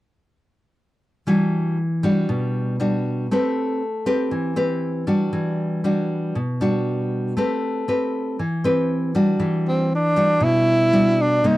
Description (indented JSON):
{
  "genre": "bossa nova",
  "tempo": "118 BPM",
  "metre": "4/4",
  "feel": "straight",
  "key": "E minor",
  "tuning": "A4 = 442 Hz",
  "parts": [
    { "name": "nylon-string guitar", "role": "accompaniment", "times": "1.3-11.6 s", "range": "B2 to B4", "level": "-20 LUFS", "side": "equal", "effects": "none" },
    { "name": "breathy tenor saxophone", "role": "melody", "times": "9.7-11.6 s", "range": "C4 to E4", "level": "-17 LUFS", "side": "right 1 dB", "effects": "none" }
  ],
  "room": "light reverb",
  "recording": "dry, close 1970s-style studio recording",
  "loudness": "-19 LUFS",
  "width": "side -16 dB against mid",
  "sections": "1.3-9.4 A section; 9.4-11.6 B section",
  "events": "none",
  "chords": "1.3 Em9; 3.3 Am9; 5.3 Em9; 7.4 Am9; 9.4 Em9"
}